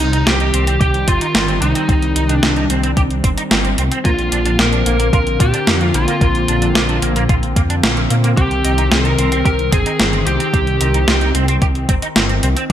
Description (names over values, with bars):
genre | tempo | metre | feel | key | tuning
synthwave | 111 BPM | 4/4 | straight | C minor | A4 = 440 Hz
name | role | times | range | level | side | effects
biting lead guitar | melody | 0.0-11.3 s | Eb4 to Bb4 | -20 LUFS | equal | overdrive, ping-pong delay
chorused pulse-width pad | sustained chords | 0.0-12.7 s | D3 to C4 | -22 LUFS | left 1 dB | sidechain pumping
clean electric guitar | riff | 0.0-12.6 s | Bb3 to G4 | -24 LUFS | right 2 dB | ensemble chorus, low-pass filter, ping-pong delay
dark detuned saw bass | bass | 0.0-12.6 s | G1 to Bb2 | -18 LUFS | equal | sidechain pumping
clean 12-bit digital drum machine | drums | 0.0-12.7 s | hi-hat, snare drum | -18 LUFS | equal | overdrive, gated reverb
electronic kick drum | drums | 0.8-12.7 s | none | -15 LUFS | equal | overdrive
room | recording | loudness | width
light reverb | bright 1980s-style digital production | -13 LUFS | side -10 dB against mid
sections
0.0-12.7 A section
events
none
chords
0.0 Cm; 4.1 Bbadd9; 8.4 Cm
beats
0.27 0.81 1.35 | 1.89 2.43 2.97 3.51 | 4.05 4.59 5.13 5.67 | 6.21 6.75 7.29 7.83 | 8.38 8.91 9.46 10.00 | 10.54 11.08 11.62 12.16 | 12.70